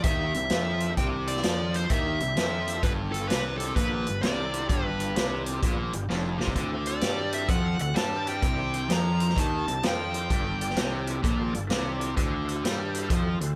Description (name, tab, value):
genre	blues rock power trio and southern rock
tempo	128 BPM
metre	4/4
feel	swing 65% on 8ths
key	G mixolydian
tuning	A4 = 439 Hz
part	dark smooth lead guitar	melody	0.0-11.2 s	A4 to Bb5	-33 LUFS	equal	overdrive
part	overdriven tonewheel organ	sustained chords	0.0-13.5 s	Bb3 to D5	-42 LUFS	equal	chorus vibrato, fast rotary speaker
part	overdriven electric guitar	riff	0.0-13.5 s	F2 to G3	-33 LUFS	equal	none
part	fuzz fingered electric bass	bass	0.0-13.6 s	F1 to G2	-34 LUFS	equal	overdrive
part	vintage drum kit	drums	0.0-13.5 s	hi-hat, kick drum, snare drum	-32 LUFS	equal	none
room	light reverb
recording	band playing live in one room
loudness	-27 LUFS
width	mono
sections	0.0-13.6 A section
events	drum fill 6.1-6.6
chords	0.0 C7; 2.8 G7; 6.6 D7; 8.4 C7; 10.3 G7; 12.2 D7